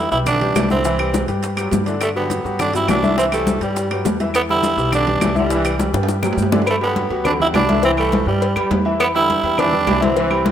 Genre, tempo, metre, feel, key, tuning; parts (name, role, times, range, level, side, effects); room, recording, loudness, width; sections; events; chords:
latin, salsa; 206 BPM; 4/4; straight; A4 = 440 Hz
raspy tenor saxophone; melody; 0.0-10.5 s; G3 to E4; -20 LUFS; right 3 dB
bright trombone section; second line; 0.0-10.5 s; D3 to G3; -27 LUFS; left 1 dB
clear baby grand piano; accompaniment; 0.0-10.5 s; D3 to E5; -23 LUFS; left 3 dB
upright bass; bass; 0.0-10.5 s; B1 to G2; -25 LUFS; equal
bongos and cowbell; percussion; 0.1-10.5 s; -27 LUFS; left 8 dB
maracas; percussion; 0.1-6.7 s; -36 LUFS; right 6 dB
claves; percussion; 0.3-10.5 s; -29 LUFS; left 1 dB
congas; percussion; 0.3-10.5 s; -23 LUFS; left 2 dB
timbales and agogo bells; percussion; 0.3-10.5 s; -26 LUFS; right 6 dB
light reverb, studio ambience; rough home demo mix; -15 LUFS; side -10 dB against mid
0.0-6.7 A section; 6.7-10.5 A section
drum fill 5.8-6.7
0.0 Em7; 0.8 Cmaj9; 2.0 Gmaj7; 3.2 Cmaj7; 4.3 Em7; 5.5 Cmaj9; 6.7 Gmaj7; 7.8 Cmaj7; 9.0 Em7